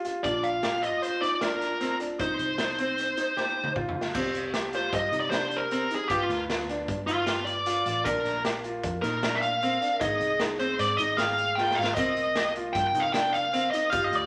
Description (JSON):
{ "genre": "progressive instrumental, band music in an uneven meter", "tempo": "153 BPM", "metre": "5/4", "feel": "straight", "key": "C minor", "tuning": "A4 = 440 Hz", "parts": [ { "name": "vibraphone with medium hard mallets", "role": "second line", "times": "0.0-14.3 s", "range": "Eb4 to B4", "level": "-38 LUFS", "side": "equal", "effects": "none" }, { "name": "clear baby grand piano", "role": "arpeggios", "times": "0.0-14.2 s", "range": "C4 to G5", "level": "-36 LUFS", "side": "equal", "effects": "none" }, { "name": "raw garage drum kit", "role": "drums", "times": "0.0-14.2 s", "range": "crash cymbal, hi-hat, kick drum, snare drum, toms", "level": "-36 LUFS", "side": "equal", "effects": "none" }, { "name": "bluesy overdriven lead guitar", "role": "melody", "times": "0.2-14.3 s", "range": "F4 to G5", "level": "-29 LUFS", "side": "equal", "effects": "distortion" }, { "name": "hollow-body short-scale picked electric bass", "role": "bass", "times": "0.2-14.3 s", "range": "G1 to C3", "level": "-42 LUFS", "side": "equal", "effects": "none" }, { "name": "egg shaker", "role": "percussion", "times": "4.1-14.1 s", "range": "none", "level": "-58 LUFS", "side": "equal", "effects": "none" } ], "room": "wet studio reverb, RT60 0.9 s", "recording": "none", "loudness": "-27 LUFS", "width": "mono", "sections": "0.0-4.1 A section; 4.1-14.3 B section", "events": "drum fill 3.4-4.1, 11.6-12.0; lead electric guitar solo 4.1-14.3", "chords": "0.2 Bb; 2.2 Cm; 6.1 G7; 8.1 Bb; 10.0 Fm7/Ab; 12.0 Cm7", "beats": "| 0.24 0.63 1.02 1.41 1.80 | 2.19 2.58 2.97 3.37 3.76 | 4.15 4.54 4.93 5.32 5.71 | 6.10 6.49 6.88 7.28 7.67 | 8.06 8.45 8.84 9.23 9.62 | 10.01 10.40 10.79 11.19 11.58 | 11.97 12.36 12.75 13.14 13.54 | 13.93" }